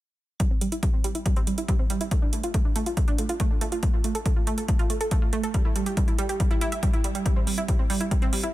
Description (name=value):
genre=uplifting trance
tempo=140 BPM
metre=4/4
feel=straight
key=unclear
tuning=A4 = 439 Hz
part: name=analog pluck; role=arpeggios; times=0.4-8.5 s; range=G3 to E5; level=-28 LUFS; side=right 3 dB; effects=chorus, sidechain pumping, dub echo
part: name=electronic hi-hat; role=drums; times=0.4-8.5 s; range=none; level=-34 LUFS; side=right 3 dB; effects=sidechain pumping on hats
part: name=electronic kick drum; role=drums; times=0.4-8.2 s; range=none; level=-24 LUFS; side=equal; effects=none
room=digital ambience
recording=none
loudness=-22 LUFS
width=side -16 dB against mid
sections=0.4-8.5 A section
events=filter sweep on synth pluck 0.4-8.5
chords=none